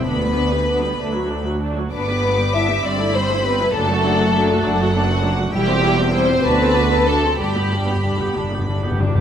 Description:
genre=quick classical-period movement for symphony orchestra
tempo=66 BPM (dotted quarters)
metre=6/8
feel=uneven beats, rubato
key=G major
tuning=A4 = 440 Hz
part: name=rich studio violin section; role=melody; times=0.0-8.8 s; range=E5 to D6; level=-28 LUFS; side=left 1 dB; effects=none
part: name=warm studio viola section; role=accompaniment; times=0.0-9.2 s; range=F#3 to A4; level=-23 LUFS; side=right 1 dB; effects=none
part: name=mellow French horn section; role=sustained chords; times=0.0-8.4 s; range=G3 to E4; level=-25 LUFS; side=left 2 dB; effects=none
part: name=dark studio violin section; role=second line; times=0.1-8.4 s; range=G4 to E5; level=-20 LUFS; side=left 2 dB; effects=none
part: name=clear chamber double bass section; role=bass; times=0.1-9.2 s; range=E1 to D2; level=-24 LUFS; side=right 2 dB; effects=none
part: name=warm studio cello section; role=bass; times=0.1-9.2 s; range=D2 to G2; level=-25 LUFS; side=right 2 dB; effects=none
part: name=timpani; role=percussion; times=7.4-9.2 s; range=G2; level=-23 LUFS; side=left 2 dB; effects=none
room=moderate scoring stage reverb, RT60 1.5 s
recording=none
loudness=-16 LUFS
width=side -9 dB against mid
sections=0.0-9.2 A section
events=timpani fill 7.4-9.2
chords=0.1 G/D; 1.0 D; 1.9 G; 2.8 Am7/G; 3.8 D/F#; 5.5 C/E; 6.4 D7; 7.4 G

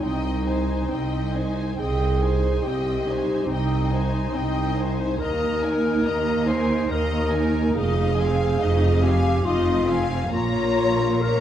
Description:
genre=cinematic, emotional film score for orchestra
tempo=70 BPM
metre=3/4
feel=rubato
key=Ab major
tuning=A4 = 440 Hz
part: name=dark studio violin section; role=melody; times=0.0-11.4 s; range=F5 to Bb5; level=-33 LUFS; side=left 2 dB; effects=none
part: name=mellow clarinet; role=second line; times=0.0-11.4 s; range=Eb4 to C5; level=-25 LUFS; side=equal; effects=none
part: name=rich studio violin section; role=second line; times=0.0-11.4 s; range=Bb4 to F5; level=-31 LUFS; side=left 3 dB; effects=none
part: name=rich studio viola section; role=accompaniment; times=0.0-11.4 s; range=Bb3 to Eb4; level=-30 LUFS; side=right 2 dB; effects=none
part: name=rich studio cello section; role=bass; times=0.0-11.4 s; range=C2 to Bb2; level=-26 LUFS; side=right 1 dB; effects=none
part: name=warm studio double bass section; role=bass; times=0.0-11.4 s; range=F1 to Eb2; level=-26 LUFS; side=right 1 dB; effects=none
room=wet recital hall reverb, RT60 1.3 s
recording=recorded in a church or concert hall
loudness=-20 LUFS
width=side -10 dB against mid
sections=0.0-11.4 A section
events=none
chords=0.0 Abmaj7/C; 5.2 Ebsus4; 7.8 Fm7; 10.3 Bbm

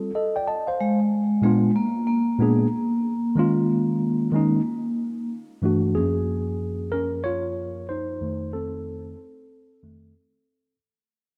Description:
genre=hip hop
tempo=93 BPM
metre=4/4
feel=swing 65% on 16ths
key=unclear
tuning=A4 = 441 Hz
part: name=mellow tine electric piano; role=accompaniment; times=0.0-10.8 s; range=F2 to A5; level=-26 LUFS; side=equal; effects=low-pass filter
part: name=vibraphone with soft mallets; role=melody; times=0.8-5.3 s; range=G#3 to A#3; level=-25 LUFS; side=equal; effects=tape echo
room=light reverb, small room ambience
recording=dark, warm production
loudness=-24 LUFS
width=mono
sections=0.0-6.0 A section; 6.0-11.1 B section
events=fade-out 6.0-11.1; tine electric piano solo 6.0-11.1; filter sweep on tine electric piano 6.0-11.1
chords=0.0 F7; 0.8 A#7b9; 3.4 D#5; 5.3 Gsus2; 6.0 F#maj9; 8.2 F7

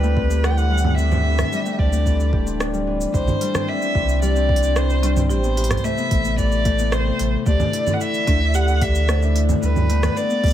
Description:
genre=folktronica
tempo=111 BPM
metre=4/4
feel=straight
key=unclear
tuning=A4 = 440 Hz
part: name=dark violin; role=melody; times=0.0-10.5 s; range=B4 to G5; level=-24 LUFS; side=left 1 dB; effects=ping-pong delay
part: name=warbly tape-like pad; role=sustained chords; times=0.0-10.5 s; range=C3 to G4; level=-29 LUFS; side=left 1 dB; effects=chorus, built-in reverb
part: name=Celtic harp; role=arpeggios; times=0.0-10.5 s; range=E3 to G4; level=-25 LUFS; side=left 5 dB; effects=ping-pong delay
part: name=warm sub bass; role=bass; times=0.0-10.5 s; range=D1 to D2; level=-20 LUFS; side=right 1 dB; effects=none
part: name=organic electronic drum kit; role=drums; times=0.0-10.5 s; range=cabasa, congas, hi-hat, rim click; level=-26 LUFS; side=right 2 dB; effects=overdrive
part: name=electronic kick drum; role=drums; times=0.2-10.5 s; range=none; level=-22 LUFS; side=right 1 dB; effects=overdrive
part: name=folk marimba with medium mallets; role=second line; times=4.2-9.3 s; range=D4 to C5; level=-31 LUFS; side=equal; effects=ping-pong delay
room=little or no reverb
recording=none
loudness=-17 LUFS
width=side -11 dB against mid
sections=0.0-3.1 A section; 3.1-10.5 B section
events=none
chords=0.0 D9sus4; 3.1 Cadd9; 5.3 Amadd9; 7.5 Dsus2; 9.6 Gadd9/D

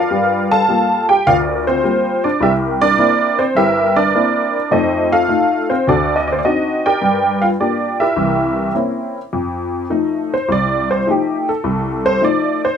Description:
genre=solo jazz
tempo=104 BPM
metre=4/4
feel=swing 69% on 8ths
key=unclear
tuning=A4 = 442 Hz
part: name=honky-tonk upright piano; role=solo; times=0.0-12.8 s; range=G1 to A5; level=-14 LUFS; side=equal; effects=none
room=light reverb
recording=minimal, uncompressed stereo recording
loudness=-14 LUFS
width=side -7 dB against mid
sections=0.0-9.3 A section; 9.3-12.8 B section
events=honky-tonk piano solo 9.3-12.8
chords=0.1 Gm7; 2.4 C7; 4.7 F7; 5.9 D7b9; 7.0 Gm7; 8.2 C7b9; 9.3 F7

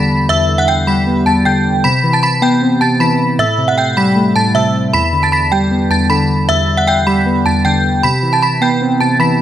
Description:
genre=hip hop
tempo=155 BPM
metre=4/4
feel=half-time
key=E minor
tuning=A4 = 438 Hz
part: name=metallic FM bell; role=melody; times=0.0-9.4 s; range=E5 to B6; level=-14 LUFS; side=right 1 dB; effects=chorus, phaser
part: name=warbly lo-fi synth keys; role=accompaniment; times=0.0-9.4 s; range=E2 to C4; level=-13 LUFS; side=equal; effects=chorus
room=light reverb, digital ambience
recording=dark, warm production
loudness=-11 LUFS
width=side -11 dB against mid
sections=0.0-9.4 A section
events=none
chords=0.0 Em7; 1.8 Cmaj7; 3.4 Am7; 4.9 Em7; 8.0 Cmaj7

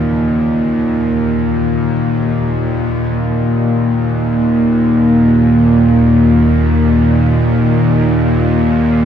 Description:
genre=dark ambient drone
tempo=free time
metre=none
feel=none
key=unclear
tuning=A4 = 440 Hz
part: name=carillon bells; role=arpeggios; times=0.0-2.6 s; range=none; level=barely audible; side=none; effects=none
part: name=bowed-like drone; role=drone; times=0.0-9.1 s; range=Eb2 to Bb2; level=-11 LUFS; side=equal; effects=built-in reverb
room=wet cathedral reverb, RT60 6.0 s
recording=dark, warm production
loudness=-11 LUFS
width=side -8 dB against mid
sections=0.0-3.2 A section; 3.2-9.1 B section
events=none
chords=0.0 Eb5

